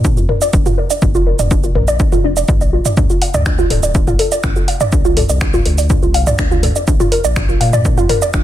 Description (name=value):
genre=melodic techno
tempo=123 BPM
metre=4/4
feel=straight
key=D minor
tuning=A4 = 439 Hz
part: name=warbly dusty pluck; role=arpeggios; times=0.0-8.4 s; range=D4 to F5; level=-17 LUFS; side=equal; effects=chorus, sidechain pumping, tape echo
part: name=round analog bass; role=bass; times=0.0-8.4 s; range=D1 to Bb2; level=-17 LUFS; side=equal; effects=sidechain pumping
part: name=electronic kick drum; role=drums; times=0.0-8.4 s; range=none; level=-15 LUFS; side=equal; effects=overdrive
part: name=punchy analog drum machine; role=drums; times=0.0-8.4 s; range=finger snaps, hi-hat, shaker, toms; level=-20 LUFS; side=right 1 dB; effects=overdrive, soft clipping on snare
room=light reverb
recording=dense, heavily limited modern master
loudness=-11 LUFS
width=side -12 dB against mid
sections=0.0-8.4 A section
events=filter sweep on synth arpeggio sound 0.0-8.4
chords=0.0 Bb; 3.0 Dm; 6.9 Bb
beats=0.05 0.53 | 1.02 1.51 2.00 2.48 | 2.97 3.46 3.95 4.44 | 4.92 5.41 5.90 6.39 | 6.88 7.36 7.85 8.34